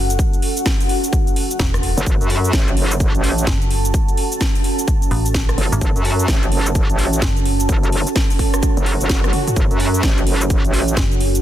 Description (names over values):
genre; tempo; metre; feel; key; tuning
bass house; 128 BPM; 4/4; swing 62% on 16ths; F# minor; A4 = 440 Hz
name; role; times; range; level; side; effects
deep dark ambient pad; sustained chords; 0.0-11.4 s; C#4 to A5; -23 LUFS; right 2 dB; chorus, built-in reverb, sidechain pumping
metallic FM bass; bass; 0.0-7.7, 11.0-11.4 s; E1 to A1; -20 LUFS; equal; overdrive, sidechain pumping
house drum kit; drums; 0.1-11.4 s; cabasa, hi-hat, rim click, snare drum, toms; -24 LUFS; equal; overdrive
electronic kick drum; drums; 0.2-11.1 s; none; -18 LUFS; equal; none
metallic wobble bass; bass; 2.0-11.0 s; F#1 to F#2; -19 LUFS; equal; chorus, tube saturation, sidechain pumping
swell; sound effects; 8.8-9.6 s; none; -28 LUFS; equal; none
room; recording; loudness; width
little or no reverb; dense, heavily limited modern master; -15 LUFS; side -12 dB against mid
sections
0.0-11.4 A section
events
swell 8.8-9.6; drum fill 9.2-9.6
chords
0.0 F#m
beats
| 0.19 0.66 1.13 1.60 | 2.06 2.53 3.00 3.47 | 3.94 4.41 4.88 5.35 | 5.81 6.28 6.75 7.22 | 7.69 8.16 8.63 9.10 | 9.56 10.03 10.50 10.97